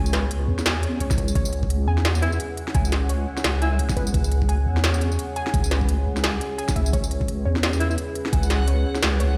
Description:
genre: half-time drum and bass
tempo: 172 BPM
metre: 4/4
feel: swing 58% on 16ths, half-time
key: C# minor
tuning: A4 = 439 Hz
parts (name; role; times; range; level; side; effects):
- dark analog pad; sustained chords; 0.0-9.4 s; C#4 to F#5; -34 LUFS; equal; chorus, sidechain pumping
- warbly dusty pluck; arpeggios; 0.0-9.4 s; B4 to G#5; -36 LUFS; equal; chorus, tape echo
- deep soft wobble bass; bass; 0.0-9.4 s; C#2 to E2; -24 LUFS; equal; chorus
- industrial drum kit; drums; 0.1-9.3 s; hi-hat, snare drum, tambourine; -29 LUFS; equal; none
- electronic kick drum; drums; 1.1-8.4 s; none; -26 LUFS; equal; overdrive
- warm alto saxophone; melody; 2.2-3.8, 7.8-8.0 s; E4; -34 LUFS; equal; digital delay
- backwards swelling texture; texture; 8.3-9.4 s; F#5; -38 LUFS; equal; built-in reverb
room: light reverb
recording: played on a big sound system in a bare room, stone room reverb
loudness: -23 LUFS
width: mono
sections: 0.0-9.4 A section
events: none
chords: 0.0 C#m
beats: 0.31 0.66 1.00 | 1.35 1.70 2.05 2.40 | 2.75 3.10 3.45 3.79 | 4.14 4.49 4.84 5.19 | 5.54 5.89 6.24 6.59 | 6.93 7.28 7.63 7.98 | 8.33 8.68 9.03

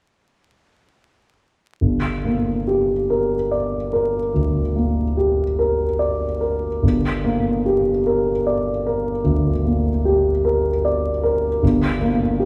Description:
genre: classical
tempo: 45-52 BPM (dotted quarters)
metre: 12/8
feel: rubato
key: G minor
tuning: A4 = 440 Hz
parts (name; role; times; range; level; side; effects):
- dark concert grand piano; accompaniment; 1.8-12.5 s; G1 to D5; -20 LUFS; equal; none
room: wet recital hall reverb, RT60 1.7 s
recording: heard from further back in the room, vinyl crackle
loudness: -20 LUFS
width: mono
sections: 1.8-12.5 A section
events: none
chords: 1.8 Gm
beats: | 1.81 3.09 4.34 5.58 | 6.82 8.06 9.25 10.45 | 11.62

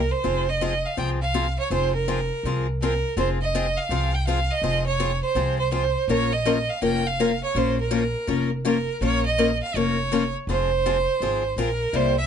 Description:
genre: acoustic string swing (jazz manouche)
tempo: 164 BPM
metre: 4/4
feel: swing 63% on 8ths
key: F minor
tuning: A4 = 440 Hz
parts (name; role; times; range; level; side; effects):
- bright violin; melody; 0.0-12.3 s; Bb4 to G5; -25 LUFS; right 4 dB; plate reverb
- upright bass; bass; 0.0-12.3 s; F1 to C2; -26 LUFS; right 1 dB; none
- picked steel-string acoustic guitar; accompaniment; 0.2-12.2 s; C3 to Bb4; -25 LUFS; left 5 dB; none
room: light reverb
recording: nothing above 10.8 kHz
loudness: -21 LUFS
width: side -8 dB against mid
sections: 0.2-12.3 A section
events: none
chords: 0.2 Fm; 6.1 Bbm; 10.5 Fm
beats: | 0.25 0.61 0.98 1.34 | 1.71 2.07 2.44 2.80 | 3.17 3.53 3.90 4.26 | 4.63 4.99 5.36 5.72 | 6.09 6.45 6.82 7.18 | 7.55 7.92 8.28 8.65 | 9.01 9.38 9.74 10.11 | 10.47 10.84 11.20 11.57 | 11.93

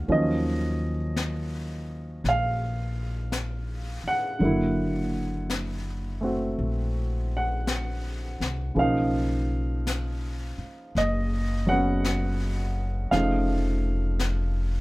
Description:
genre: jazz ballad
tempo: 55 BPM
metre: 4/4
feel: swing 66% on 8ths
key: unclear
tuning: A4 = 440 Hz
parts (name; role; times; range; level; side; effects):
- warm upright piano; accompaniment; 0.0-14.8 s; C#3 to Gb5; -27 LUFS; right 1 dB; none
- upright bass; bass; 0.0-14.8 s; F1 to Eb2; -28 LUFS; equal; none
- jazz brush drum kit; drums; 0.1-14.8 s; brushed snare drum, hi-hat, snare drum; -35 LUFS; left 3 dB; none
room: light reverb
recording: none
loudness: -24 LUFS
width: side -20 dB against mid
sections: 0.0-14.8 A section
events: none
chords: 0.1 Ebm9; 4.4 Gb7alt; 8.8 Bmaj9#11; 13.1 Faug7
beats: | 0.09 1.17 2.24 3.32 | 4.40 5.48 6.57 7.66 | 8.76 9.85 10.94 12.03 | 13.11 14.18

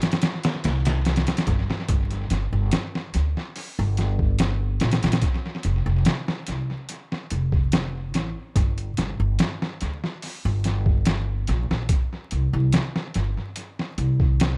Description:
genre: trip hop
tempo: 72 BPM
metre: 4/4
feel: straight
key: unclear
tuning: A4 = 440 Hz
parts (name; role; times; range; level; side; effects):
- boom bap sampler-style drum kit; drums; 0.0-14.6 s; hi-hat, kick drum, snare drum; -26 LUFS; equal; vintage 12-bit sampler grit, studio reverb, tape echo
- upright bass; bass; 0.6-14.6 s; F1 to D2; -26 LUFS; equal; none
room: little or no reverb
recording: echo-heavy mix, vinyl crackle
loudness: -24 LUFS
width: mono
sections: 0.0-1.9 A section; 1.9-14.6 B section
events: none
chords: none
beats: 0.23 1.06 | 1.89 2.73 3.56 4.39 | 5.22 6.06 6.89 7.72 | 8.56 9.39 10.22 11.06 | 11.89 12.72 13.56 14.39

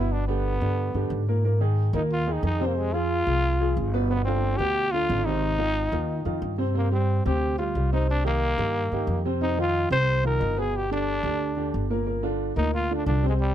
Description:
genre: latin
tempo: 181 BPM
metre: 4/4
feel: straight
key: unclear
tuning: A4 = 440 Hz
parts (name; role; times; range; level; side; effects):
- growling trombone; melody; 0.0-13.5 s; G3 to C5; -27 LUFS; equal; none
- clear upright piano; accompaniment; 0.0-13.5 s; Bb2 to C5; -28 LUFS; right 2 dB; none
- upright bass; bass; 0.0-13.5 s; G1 to Ab2; -26 LUFS; equal; none
room: little or no reverb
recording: close, detailed microphones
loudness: -22 LUFS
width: side -11 dB against mid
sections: 0.0-13.5 A section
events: none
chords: 0.1 G; 1.4 Absus2; 2.8 Fm; 4.1 G7; 5.4 Ab6; 6.8 Gsus4; 8.1 Cm; 9.4 F5; 10.7 G; 12.1 Gm7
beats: | 0.11 0.45 0.78 1.11 | 1.44 1.77 2.11 2.44 | 2.77 3.10 3.43 3.77 | 4.10 4.43 4.76 5.09 | 5.43 5.76 6.09 6.42 | 6.75 7.09 7.42 7.75 | 8.08 8.41 8.75 9.08 | 9.41 9.74 10.07 10.41 | 10.74 11.07 11.40 11.73 | 12.07 12.40 12.73 13.06 | 13.39

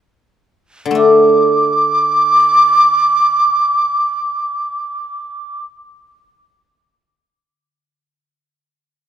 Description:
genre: chinese traditional, Chinese chamber ensemble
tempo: free time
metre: none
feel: none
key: unclear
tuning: A4 = 441 Hz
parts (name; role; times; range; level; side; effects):
- guzheng; accompaniment; 0.9-7.5 s; D3 to D4; -12 LUFS; equal; none
- mellow large dizi; melody; 1.0-5.6 s; D6; -12 LUFS; right 1 dB; none
room: moderate scoring stage reverb, RT60 2.0 s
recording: minimal, uncompressed stereo recording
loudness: -10 LUFS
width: side -10 dB against mid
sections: 1.0-6.7 A section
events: none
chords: none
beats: free time

